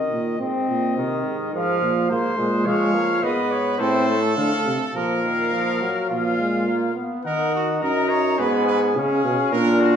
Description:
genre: classical, imitative canzona for brass ensemble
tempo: 105 BPM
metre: 4/4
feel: straight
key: Eb minor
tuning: A4 = 440 Hz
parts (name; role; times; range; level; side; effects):
- warm trumpet; melody; 0.0-10.0 s; C5 to Bb5; -26 LUFS; left 4 dB; none
- clear trombone; accompaniment; 0.0-10.0 s; D#3 to Eb4; -23 LUFS; equal; none
- mellow bass trombone; bass; 0.1-10.0 s; Gb2 to F3; -23 LUFS; right 1 dB; none
- bright trumpet; second line; 2.7-10.0 s; F4 to Db5; -26 LUFS; right 4 dB; none
room: wet stone room reverb, RT60 1.3 s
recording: heard from further back in the room, nothing above 10.8 kHz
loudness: -19 LUFS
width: side -8 dB against mid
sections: 0.0-7.3 A section; 7.3-10.0 B section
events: none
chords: 0.4 G#; 1.5 Fm/Ab; 2.7 Fdim; 3.8 Am; 4.9 Bbsus4; 6.1 Bb5; 7.3 Ebm; 8.4 Fdim/Ab

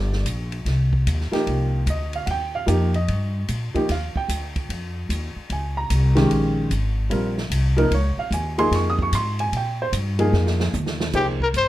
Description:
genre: modal jazz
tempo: 149 BPM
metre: 4/4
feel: swing 66% on 8ths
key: C phrygian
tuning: A4 = 441 Hz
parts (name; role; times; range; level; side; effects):
- dark baby grand piano; accompaniment; 0.0-11.4 s; Eb3 to Eb6; -23 LUFS; right 1 dB; none
- upright bass; bass; 0.0-11.7 s; G1 to Bb2; -22 LUFS; equal; none
- open jazz drum kit; drums; 0.1-11.7 s; crash cymbal, hi-hat, kick drum, ride cymbal, snare drum, toms; -31 LUFS; right 1 dB; none
- mellow trumpet; melody; 11.2-11.7 s; G4 to C5; -20 LUFS; left 3 dB; none
room: light reverb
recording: dark, warm production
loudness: -20 LUFS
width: side -15 dB against mid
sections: 0.0-11.1 A section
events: drum fill 10.3-11.1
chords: 0.0 Cm11; 4.7 Bbm11; 11.1 Cm11

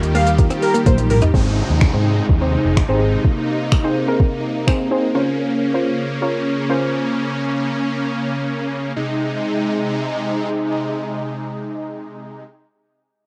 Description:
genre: dance-pop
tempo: 126 BPM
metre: 4/4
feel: straight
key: Ab major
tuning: A4 = 440 Hz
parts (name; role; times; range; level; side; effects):
- soft round pluck; accompaniment; 0.0-7.1 s; Bb3 to Db5; -25 LUFS; equal; chorus, sidechain pumping, cassette tape, plate reverb
- supersaw chords; sustained chords; 0.0-12.4 s; C3 to G4; -23 LUFS; equal; sidechain pumping, cassette tape
- vintage muted fingered electric bass; bass; 0.0-3.1 s; F1 to Ab2; -21 LUFS; equal; sidechain pumping
- smooth R&B drum kit; drums; 0.0-4.8 s; finger snaps, hi-hat, kick drum, shaker, toms; -18 LUFS; equal; cassette tape
- direct-recorded clean electric guitar; riff; 0.1-1.3 s; Bb3 to Eb4; -24 LUFS; equal; lush chorus, cassette tape
- fat analog lead; melody; 0.2-1.2 s; Bb4 to F5; -23 LUFS; equal; cassette tape, plate reverb
- downlifter; sound effects; 1.3-5.2 s; none; -32 LUFS; equal; none
room: moderate studio reverb, RT60 0.6 s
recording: home recording on cassette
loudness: -19 LUFS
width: mono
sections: 0.0-1.3 A section; 1.3-9.0 B section; 9.0-12.8 C section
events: drop 0.0-1.3; drum fill 0.9-1.3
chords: 0.0 Ebadd9; 1.3 Ab; 5.1 Bbmadd9; 9.0 Ab

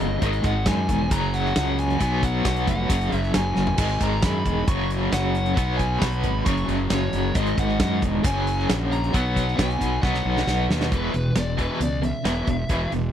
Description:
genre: classic rock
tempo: 135 BPM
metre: 4/4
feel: straight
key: B major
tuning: A4 = 440 Hz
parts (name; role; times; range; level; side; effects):
- biting lead guitar; melody; 0.0-12.9 s; B4 to C#6; -29 LUFS; left 1 dB; overdrive
- cranked stack guitar; riff; 0.0-13.1 s; E2 to B3; -25 LUFS; equal; overdrive, tremolo
- fuzz fingered electric bass; bass; 0.0-13.1 s; E1 to F#2; -25 LUFS; equal; overdrive
- big rock drum kit; drums; 0.0-13.0 s; crash cymbal, hi-hat, kick drum, snare drum, toms; -26 LUFS; equal; none
room: little or no reverb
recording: dry, close 1970s-style studio recording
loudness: -20 LUFS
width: side -10 dB against mid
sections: 0.0-10.9 A section; 10.9-13.1 B section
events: drum fill 3.6, 10.0-10.9; lead electric guitar solo 10.9-13.1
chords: 0.2 G#5; 1.1 F#5; 2.0 B5; 2.9 F#5; 3.8 G#m; 4.7 F#5; 5.6 B5; 6.5 F#5; 7.4 G#5; 8.2 F#; 9.1 B5; 10.0 B; 10.9 E5

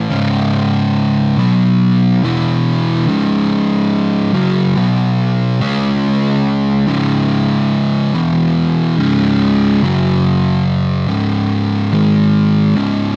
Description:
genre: metal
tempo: 71 BPM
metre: 4/4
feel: straight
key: C# minor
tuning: A4 = 441 Hz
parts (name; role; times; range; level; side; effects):
- fuzz guitar; solo; 0.0-13.2 s; C#2 to C#4; -14 LUFS; equal; distortion
room: light reverb, digital ambience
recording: dark, warm production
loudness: -14 LUFS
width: mono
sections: 0.0-6.9 A section; 6.9-13.2 B section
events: none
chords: 0.1 C#5; 1.4 B5; 2.2 E5; 3.1 C#5; 4.8 B5; 5.6 C#5; 8.1 E5; 9.0 C#5; 9.8 F#5; 11.1 C#5; 11.9 G#5

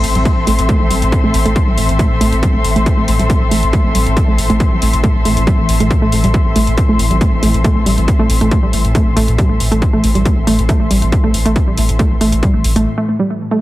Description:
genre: driving peak-time techno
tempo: 138 BPM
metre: 4/4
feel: straight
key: A minor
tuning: A4 = 440 Hz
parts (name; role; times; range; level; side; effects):
- saturated sub bass; bass; 0.0-12.9 s; A1; -17 LUFS; equal; overdrive, sidechain pumping, low-pass filter
- swarming drone; drone; 0.0-12.9 s; A2 to E3; -23 LUFS; left 1 dB; built-in reverb, sidechain pumping
- electronic hi-hat; drums; 0.0-12.8 s; none; -23 LUFS; left 1 dB; overdrive
- muted chamber string section; texture; 0.0-12.9 s; C4 to C6; -20 LUFS; left 2 dB; sidechain pumping
- warbly dusty pluck; riff; 0.2-13.6 s; G3 to A3; -18 LUFS; right 1 dB; chorus, tube saturation, sidechain pumping, analog delay
- electronic kick drum; drums; 0.3-12.5 s; none; -14 LUFS; equal; overdrive
room: light reverb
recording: echo-heavy mix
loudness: -11 LUFS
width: side -16 dB against mid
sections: 0.0-13.6 A section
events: filter sweep on synth arpeggio sound 0.0-13.6; break 12.9-13.6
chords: 0.0 Am

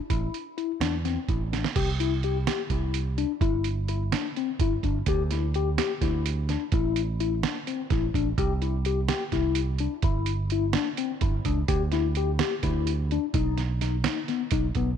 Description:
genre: progressive instrumental, band music in an uneven meter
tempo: 254 BPM (eighths)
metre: 7/8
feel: straight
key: unclear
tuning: A4 = 440 Hz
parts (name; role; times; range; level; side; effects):
- mellow tine electric piano; arpeggios; 0.1-14.9 s; B3 to G4; -29 LUFS; left 11 dB; analog chorus
- picked electric bass; bass; 0.1-14.9 s; G1 to E2; -27 LUFS; right 2 dB; none
- lo-fi sampler-style drum kit; drums; 0.1-14.9 s; crash cymbal, hi-hat, kick drum, snare drum; -29 LUFS; right 4 dB; none
room: light reverb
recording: 1960s-style stereo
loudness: -24 LUFS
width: side -8 dB against mid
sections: 0.0-1.8 A section; 1.8-15.0 B section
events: drum fill 1.5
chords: 0.1 A5; 1.8 C; 3.4 G5; 5.1 Dsus4; 6.7 A5; 8.4 C; 10.0 G5; 11.7 Dsus4; 13.3 B

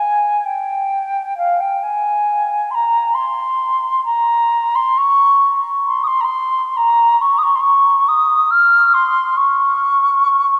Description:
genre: classical, free, expressive piece for unaccompanied flute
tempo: 68 BPM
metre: 3/4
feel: uneven beats, rubato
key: unclear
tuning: A4 = 440 Hz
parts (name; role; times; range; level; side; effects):
- mellow wooden flute; solo; 0.0-10.6 s; F5 to F6; -15 LUFS; equal; none
room: wet cathedral reverb, RT60 5.4 s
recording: dark, warm production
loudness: -15 LUFS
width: mono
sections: 0.0-10.6 A section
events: none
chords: none

